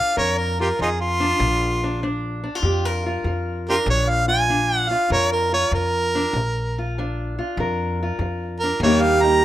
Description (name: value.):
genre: acoustic country blues, solo or duo.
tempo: 97 BPM.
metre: 4/4.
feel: swing 66% on 8ths.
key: Bb major.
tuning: A4 = 440 Hz.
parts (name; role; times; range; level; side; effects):
warm harmonica; melody; 0.0-9.4 s; Eb4 to Bb5; -20 LUFS; right 1 dB; plate reverb.
fingerpicked steel-string acoustic guitar; accompaniment; 0.0-9.4 s; Bb2 to Bb4; -23 LUFS; equal; none.
upright bass; bass; 0.2-9.4 s; Bb1 to F2; -25 LUFS; equal; none.
room: moderate small room reverb, RT60 0.6 s.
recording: rough home demo mix.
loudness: -19 LUFS.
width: side -13 dB against mid.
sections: 0.0-9.4 A section.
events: harmonica solo 0.0-9.4.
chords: 0.0 Bb; 8.8 Eb.